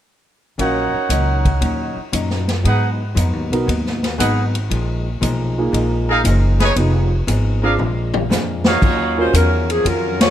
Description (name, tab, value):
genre	jazz, big band swing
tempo	117 BPM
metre	4/4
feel	swing 68% on 8ths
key	Eb minor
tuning	A4 = 440 Hz
part	archtop guitar, miked and amplified	accompaniment	0.6-10.2 s	Ab2 to Ab4	-25 LUFS	left 3 dB	none
part	warm grand piano	accompaniment	0.6-9.3 s	Bb3 to F5	-22 LUFS	right 2 dB	none
part	clear trumpet section	stabs	0.6-9.3 s	D4 to Gb5	-21 LUFS	right 2 dB	none
part	upright bass	bass	0.6-10.3 s	F1 to Ab2	-19 LUFS	equal	none
part	swinging big-band drum kit	drums	0.6-10.3 s	crash cymbal, hi-hat, kick drum, ride cymbal, snare drum, toms	-22 LUFS	equal	none
part	warm saxophone section	melody	9.2-10.3 s	F3 to Db5	-18 LUFS	left 2 dB	none
room	light reverb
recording	none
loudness	-15 LUFS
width	side -11 dB against mid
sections	0.6-8.8 A section; 8.8-10.3 B section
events	drum fill 7.8-8.8; band accent 10.1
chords	0.6 Ebm7/Bb; 2.7 Abm7; 4.7 Bb7sus4; 6.8 Fm7b5; 7.8 Bb7; 8.8 Ebm9